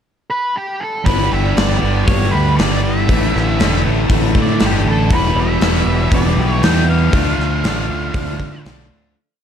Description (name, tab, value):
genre	rock, shoegaze and dream pop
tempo	119 BPM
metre	4/4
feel	straight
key	unclear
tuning	A4 = 439 Hz
part	octave-fuzz lead guitar	melody	0.3-8.6 s	G4 to G5	-22 LUFS	right 1 dB	distortion, tape echo
part	cranked stack guitar	riff	1.0-9.1 s	G2 to F4	-21 LUFS	right 8 dB	overdrive, reverse reverb
part	electric guitar through a small old amp	arpeggios	1.1-9.4 s	E3 to A4	-25 LUFS	left 3 dB	wide subtle chorus, tape echo
part	overdriven electric guitar	riff	1.1-9.1 s	E2 to G4	-23 LUFS	left 10 dB	wide subtle chorus
part	tight distorted guitar	riff	1.1-9.1 s	E2 to D4	-25 LUFS	equal	distortion
part	growling fingered electric bass	bass	1.1-9.1 s	E1 to D3	-18 LUFS	equal	overdrive
part	gated 80s drum kit	drums	1.1-8.8 s	hi-hat, kick drum, snare drum	-17 LUFS	equal	none
room	small room reverb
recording	dark, warm production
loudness	-13 LUFS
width	side -8 dB against mid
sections	0.0-1.1 pickup bar; 1.1-9.2 verse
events	fade-out 7.1-9.2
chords	0.0 N.C.; 1.1 G6; 3.1 Asus4; 5.1 Em7; 7.1 Dm